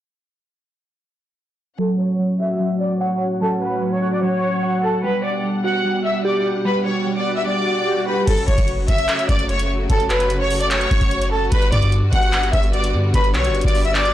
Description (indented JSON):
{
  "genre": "hip hop, trap",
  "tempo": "148 BPM",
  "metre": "4/4",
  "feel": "half-time",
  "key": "F# minor",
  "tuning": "A4 = 440 Hz",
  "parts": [
    { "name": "warm studio violin section", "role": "melody", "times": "1.8-14.1 s", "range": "A4 to F#6", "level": "-21 LUFS", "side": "left 1 dB", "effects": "low-pass filter" },
    { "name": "glassy digital keys", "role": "accompaniment", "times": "1.8-8.3 s", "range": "F#3 to F#5", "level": "-20 LUFS", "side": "right 1 dB", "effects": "chorus, low-pass filter" },
    { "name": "rich symphonic string section", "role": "sustained chords", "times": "1.8-14.1 s", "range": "A2 to F#5", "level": "-27 LUFS", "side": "left 2 dB", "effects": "low-pass filter" },
    { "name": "swell", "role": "sound effects", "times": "7.2-8.3 s", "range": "none", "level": "-28 LUFS", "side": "left 1 dB", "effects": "none" },
    { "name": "clean 808-style bass", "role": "bass", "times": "8.3-14.1 s", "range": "F#1 to G2", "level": "-20 LUFS", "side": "equal", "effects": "none" },
    { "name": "booming analog drum machine", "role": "drums", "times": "8.3-14.1 s", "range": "crash cymbal, handclaps, hi-hat, kick drum", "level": "-21 LUFS", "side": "equal", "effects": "none" }
  ],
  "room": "light reverb",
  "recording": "blown-out, overdriven recording, overdrive",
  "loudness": "-16 LUFS",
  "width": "side -12 dB against mid",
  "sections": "1.8-8.3 A section; 8.3-14.1 B section",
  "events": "filter sweep 1.8-8.3; swell 7.2-8.3",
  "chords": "1.8 F#m; 5.0 Gmaj7; 8.3 F#m; 11.5 Gmaj7",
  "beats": "| 1.79 2.19 2.60 3.01 | 3.41 3.82 4.22 4.63 | 5.03 5.44 5.84 6.25 | 6.65 7.06 7.46 7.87 | 8.28 8.68 9.09 9.49 | 9.90 10.30 10.71 11.11 | 11.52 11.92 12.33 12.73 | 13.14 13.55 13.95"
}